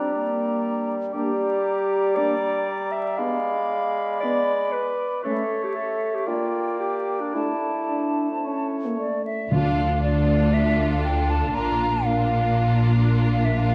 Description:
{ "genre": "classical, dramatic, fast romantic movement for symphony orchestra", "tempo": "118 BPM", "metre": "4/4", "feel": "rubato", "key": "D minor", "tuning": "A4 = 440 Hz", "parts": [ { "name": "dark cor anglais", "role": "second line", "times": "0.0-9.2 s", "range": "C#5 to D5", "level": "-35 LUFS", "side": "equal", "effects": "none" }, { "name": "hollow concert flute", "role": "second line", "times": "0.0-13.7 s", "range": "D5 to B5", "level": "-31 LUFS", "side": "equal", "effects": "none" }, { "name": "mellow clarinet", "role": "second line", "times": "0.0-9.0 s", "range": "D4 to E#5", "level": "-29 LUFS", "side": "equal", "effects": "none" }, { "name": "warm bassoon", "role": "accompaniment", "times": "0.0-9.2 s", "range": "G3 to Bb3", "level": "-31 LUFS", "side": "equal", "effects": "none" }, { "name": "mellow French horn section", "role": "sustained chords", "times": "0.0-9.5 s", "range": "A3 to D4", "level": "-32 LUFS", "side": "equal", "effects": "none" }, { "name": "warm symphonic violin section", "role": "melody", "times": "9.5-13.7 s", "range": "A4 to Bb4", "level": "-38 LUFS", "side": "equal", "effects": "none" }, { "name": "rich chamber violin section", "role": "second line", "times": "9.5-13.7 s", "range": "F4", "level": "-34 LUFS", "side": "equal", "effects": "none" }, { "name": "rich studio viola section", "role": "accompaniment", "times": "9.5-13.7 s", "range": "D4", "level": "-32 LUFS", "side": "equal", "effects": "none" }, { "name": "rich symphonic cello section", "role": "bass", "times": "9.5-13.7 s", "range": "D2 to Bb2", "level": "-27 LUFS", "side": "equal", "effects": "none" }, { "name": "rich symphonic double bass section", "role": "bass", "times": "9.5-13.7 s", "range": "Bb1 to D2", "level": "-25 LUFS", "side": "equal", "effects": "none" }, { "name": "timpani", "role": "percussion", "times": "9.5-10.2 s", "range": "D3", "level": "-28 LUFS", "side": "equal", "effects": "none" } ], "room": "moderate concert hall reverb, RT60 2.0 s", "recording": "dark, warm production, vinyl crackle", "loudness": "-23 LUFS", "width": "mono", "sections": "0.0-9.5 A section; 9.5-13.7 B section", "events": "none", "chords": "0.0 Gm; 3.2 G#dim7; 5.2 A; 6.3 Gm/Bb; 7.3 Asus4; 8.4 A; 9.5 Dm; 11.5 Bb" }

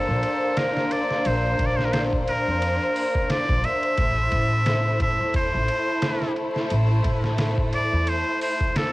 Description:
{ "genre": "trip hop", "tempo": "88 BPM", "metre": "4/4", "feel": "swing 56% on 16ths", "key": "A phrygian", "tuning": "A4 = 440 Hz", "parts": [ { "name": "trumpet with straight mute", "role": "melody", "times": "0.0-8.9 s", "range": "A4 to E5", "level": "-26 LUFS", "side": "equal", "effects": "cassette tape, tape echo" }, { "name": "dark studio violin section", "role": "sustained chords", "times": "0.0-8.9 s", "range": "A3 to C5", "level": "-26 LUFS", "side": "left 1 dB", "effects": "none" }, { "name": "upright bass", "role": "bass", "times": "0.0-8.2 s", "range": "A1 to F2", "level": "-24 LUFS", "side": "equal", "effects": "tube saturation" }, { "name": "trip hop sampler-style drum kit", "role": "drums", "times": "0.2-8.9 s", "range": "hi-hat, kick drum, ride cymbal, snare drum", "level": "-28 LUFS", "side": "equal", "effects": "cassette tape" } ], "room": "little or no reverb", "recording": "home recording on cassette, vinyl crackle", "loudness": "-20 LUFS", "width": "side -19 dB against mid", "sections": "0.0-8.9 A section", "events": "none", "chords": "0.0 Bbadd9; 4.0 Am" }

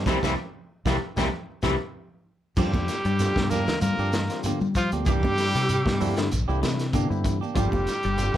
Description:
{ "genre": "afrobeat", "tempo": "96 BPM", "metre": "4/4", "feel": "swing 53% on 16ths", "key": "G dorian", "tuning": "A4 = 439 Hz", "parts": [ { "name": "barky tine electric piano", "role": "accompaniment", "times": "0.0-8.4 s", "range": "D3 to F4", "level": "-34 LUFS", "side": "left 4 dB", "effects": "overdrive" }, { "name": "semi-hollow electric guitar", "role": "stabs", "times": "0.0-8.4 s", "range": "E3 to G4", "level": "-34 LUFS", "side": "right 8 dB", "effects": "none" }, { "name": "fingered electric bass", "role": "bass", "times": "0.0-8.4 s", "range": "F1 to G3", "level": "-27 LUFS", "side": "equal", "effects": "none" }, { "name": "electric guitar at the edge of break-up", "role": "arpeggios", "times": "0.1-8.3 s", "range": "C3 to G3", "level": "-31 LUFS", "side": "left 5 dB", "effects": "none" }, { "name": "crunchy breakbeat drum kit", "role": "drums", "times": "0.1-8.4 s", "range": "crash cymbal, hi-hat, kick drum, snare drum", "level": "-30 LUFS", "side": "equal", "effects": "none" }, { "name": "congas", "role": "percussion", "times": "0.1-8.4 s", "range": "none", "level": "-33 LUFS", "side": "right 4 dB", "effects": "none" }, { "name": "shekere", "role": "percussion", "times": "0.1-8.3 s", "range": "none", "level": "-34 LUFS", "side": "right 1 dB", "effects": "none" }, { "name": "bright trumpet", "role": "melody", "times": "2.6-8.4 s", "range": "F4 to Bb4", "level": "-29 LUFS", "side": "equal", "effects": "none" }, { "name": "growling tenor saxophone", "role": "second line", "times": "2.6-8.4 s", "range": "F3 to Bb3", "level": "-31 LUFS", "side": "right 2 dB", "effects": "none" } ], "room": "light reverb", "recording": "none", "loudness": "-22 LUFS", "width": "side -12 dB against mid", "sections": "0.0-2.6 A section; 2.6-8.4 B section", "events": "band accent 0.1-2.6; drum fill 1.9-2.6", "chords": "0.1 C7; 2.6 Gm7; 5.1 C9; 7.6 Gm7" }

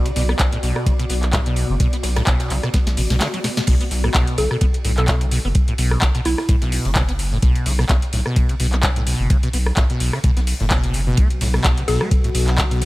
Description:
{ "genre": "acid house", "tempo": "128 BPM", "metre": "4/4", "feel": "swing 55% on 16ths", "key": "B minor", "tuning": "A4 = 440 Hz", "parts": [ { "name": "acid bass, saw", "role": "riff", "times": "0.0-12.9 s", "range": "A2 to B3", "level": "-24 LUFS", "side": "equal", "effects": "tube saturation, wide subtle chorus, tape echo" }, { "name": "saturated sub bass", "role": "bass", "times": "0.0-12.9 s", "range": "F#1 to B1", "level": "-21 LUFS", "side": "equal", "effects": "tube saturation, sidechain pumping" }, { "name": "granular cloud pad", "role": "texture", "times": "0.0-3.7 s", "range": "B3 to D5", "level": "-30 LUFS", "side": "left 1 dB", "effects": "built-in reverb, sidechain pumping" }, { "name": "booming analog drum machine", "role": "drums", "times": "0.1-12.9 s", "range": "crash cymbal, handclaps, hi-hat, ride cymbal, rim click, snare drum", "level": "-24 LUFS", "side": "equal", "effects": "none" }, { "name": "compact cocktail drum kit", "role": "drums", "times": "0.2-12.9 s", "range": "hi-hat, ride cymbal, snare drum", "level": "-35 LUFS", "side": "right 1 dB", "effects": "none" }, { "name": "electronic kick drum", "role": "drums", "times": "0.4-12.7 s", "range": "none", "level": "-18 LUFS", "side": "equal", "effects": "none" }, { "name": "hollow square pluck", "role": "melody", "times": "4.4-6.6, 11.9-12.0 s", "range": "E4 to A4", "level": "-26 LUFS", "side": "equal", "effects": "chorus, tape echo" }, { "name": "warm analog pad", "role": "sustained chords", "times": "11.2-12.9 s", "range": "B2 to B4", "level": "-28 LUFS", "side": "left 2 dB", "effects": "wide subtle chorus, sidechain pumping" } ], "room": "small room ambience", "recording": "none", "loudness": "-16 LUFS", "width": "side -19 dB against mid", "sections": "0.0-3.7 A section; 3.7-12.9 B section", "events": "drum fill 2.7-3.7; break 3.2-3.7; band accent 3.6; drop 3.7-12.9", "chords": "0.0 B5" }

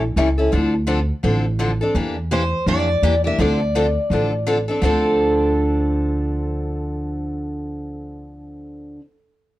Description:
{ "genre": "acoustic string swing (jazz manouche)", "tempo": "168 BPM", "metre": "4/4", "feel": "swing 60% on 8ths", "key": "D minor", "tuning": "A4 = 438 Hz", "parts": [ { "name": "picked steel-string acoustic guitar", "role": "accompaniment", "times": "0.0-9.0 s", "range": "D3 to A4", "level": "-22 LUFS", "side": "left 1 dB", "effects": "none" }, { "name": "upright bass", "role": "bass", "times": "0.0-9.0 s", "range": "A1 to F2", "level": "-22 LUFS", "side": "equal", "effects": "none" }, { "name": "picked steel-string acoustic guitar", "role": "melody", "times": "2.3-9.0 s", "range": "A4 to E5", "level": "-23 LUFS", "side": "equal", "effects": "slapback echo, plate reverb" } ], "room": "light reverb", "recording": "worn, warbling old tape, cassette tape, warbly pitch drift", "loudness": "-17 LUFS", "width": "side -15 dB against mid", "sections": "0.0-2.0 A section; 2.0-4.8 B section; 4.8-7.7 C section", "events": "none", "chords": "0.0 A7; 0.5 Dm7; 2.0 Em7b5; 3.4 Dm7" }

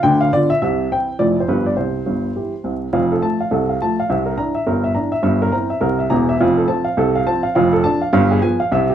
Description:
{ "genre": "jazz, stride piano", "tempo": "208 BPM", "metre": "4/4", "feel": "swing 61% on 8ths", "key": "F major", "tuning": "A4 = 439 Hz", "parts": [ { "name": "warm upright piano", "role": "solo", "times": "0.0-8.9 s", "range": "E1 to Bb5", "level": "-15 LUFS", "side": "right 1 dB", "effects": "none" } ], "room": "wet small room reverb, RT60 0.5 s", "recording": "heard from further back in the room, vinyl crackle", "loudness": "-15 LUFS", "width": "side -10 dB against mid", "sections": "0.0-2.9 A section; 2.9-8.9 B section", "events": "none", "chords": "0.0 G7; 0.6 C; 1.2 Fmaj7; 1.5 G7; 1.8 C; 2.9 F; 4.1 C9; 5.2 C7/G; 6.4 F; 7.6 Dm/F; 8.1 G7b9" }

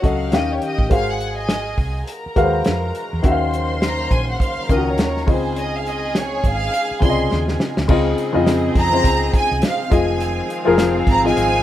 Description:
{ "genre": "lush 1970s-style soul", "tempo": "103 BPM", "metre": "4/4", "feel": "swing 58% on 16ths", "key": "Db major", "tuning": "A4 = 440 Hz", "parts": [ { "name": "warm studio violin section", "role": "melody", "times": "0.0-11.6 s", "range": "C5 to C6", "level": "-23 LUFS", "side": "right 1 dB", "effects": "none" }, { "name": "warm studio string section", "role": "second line", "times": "0.0-11.6 s", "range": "C4 to C6", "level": "-26 LUFS", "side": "right 2 dB", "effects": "none" }, { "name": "warm baby grand piano", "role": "accompaniment", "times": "0.0-11.6 s", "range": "Db3 to F5", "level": "-20 LUFS", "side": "left 3 dB", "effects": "none" }, { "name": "hollow-body short-scale fingered electric bass", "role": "bass", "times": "0.0-11.6 s", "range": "F1 to F2", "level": "-24 LUFS", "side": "right 1 dB", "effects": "none" }, { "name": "warm soul drum kit", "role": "drums", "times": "0.0-11.5 s", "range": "crash cymbal, hi-hat, kick drum, snare drum", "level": "-19 LUFS", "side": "equal", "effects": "none" }, { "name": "tonewheel organ", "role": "sustained chords", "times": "3.2-11.6 s", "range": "Db3 to F5", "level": "-33 LUFS", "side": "right 3 dB", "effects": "none" } ], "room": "light reverb", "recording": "rough home demo mix", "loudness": "-16 LUFS", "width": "side -12 dB against mid", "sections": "0.0-7.9 A section; 7.9-11.6 B section", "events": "violin section solo 0.0-7.9; drum fill 7.3-7.9", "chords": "0.3 Eb9; 0.9 Ab13; 3.2 Ebm9; 5.3 Dbmaj9; 9.9 Fm7" }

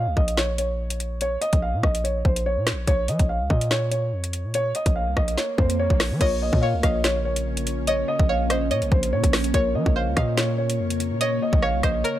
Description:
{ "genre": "hip hop, drill", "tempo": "144 BPM", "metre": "4/4", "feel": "half-time", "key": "Bb minor", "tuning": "A4 = 440 Hz", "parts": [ { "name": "dark concert grand piano", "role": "melody", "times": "0.0-12.2 s", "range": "C5 to F5", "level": "-26 LUFS", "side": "right 1 dB", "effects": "tape echo" }, { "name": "hard-hitting 808-style bass", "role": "bass", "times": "0.0-12.0 s", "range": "Bb1 to F3", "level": "-25 LUFS", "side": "equal", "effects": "none" }, { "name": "drill drum kit", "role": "drums", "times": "0.2-12.1 s", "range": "crash cymbal, hi-hat, kick drum, rim click, snare drum", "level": "-23 LUFS", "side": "equal", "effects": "none" }, { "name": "swell", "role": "sound effects", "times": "5.0-6.2 s", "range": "none", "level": "-33 LUFS", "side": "right 7 dB", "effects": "none" }, { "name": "string-like resonator pluck", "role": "second line", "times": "6.2-12.2 s", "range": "Bb4 to F5", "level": "-28 LUFS", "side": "equal", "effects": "chorus, phaser, tape echo" }, { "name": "muted felt-like synth keys", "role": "accompaniment", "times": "6.2-12.2 s", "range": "Bb3 to Db5", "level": "-31 LUFS", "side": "left 2 dB", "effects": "chorus, tremolo" }, { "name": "ethereal airy pad", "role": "sustained chords", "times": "7.1-12.2 s", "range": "Db3 to Db5", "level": "-30 LUFS", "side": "left 1 dB", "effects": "ensemble chorus, built-in reverb" } ], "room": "light reverb", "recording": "none", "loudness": "-20 LUFS", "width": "side -13 dB against mid", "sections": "0.0-6.2 A section; 6.2-12.2 B section", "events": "swell 5.0-6.2", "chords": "0.0 Bbm" }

